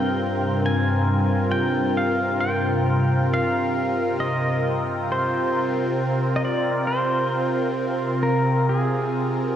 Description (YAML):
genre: ambient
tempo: 67 BPM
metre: 4/4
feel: straight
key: unclear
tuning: A4 = 439 Hz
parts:
  - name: pedal steel guitar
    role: melody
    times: 0.0-9.6 s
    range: Ab4 to Ab5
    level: -26 LUFS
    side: equal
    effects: shimmer reverb, diffuse ambient delay
  - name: evolving wavetable pad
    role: sustained chords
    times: 0.0-9.6 s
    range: G2 to Bb4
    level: -21 LUFS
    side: equal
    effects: phaser, built-in reverb, shimmer reverb
room: wet concert hall reverb, RT60 2.2 s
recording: dark, warm production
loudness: -20 LUFS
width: side -9 dB against mid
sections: 0.0-9.6 A section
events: none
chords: 0.0 Eb/G (rootless); 5.1 Bb5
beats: 0.61 | 1.51 2.40 3.30 4.19 | 5.09 5.99 6.88 7.78 | 8.67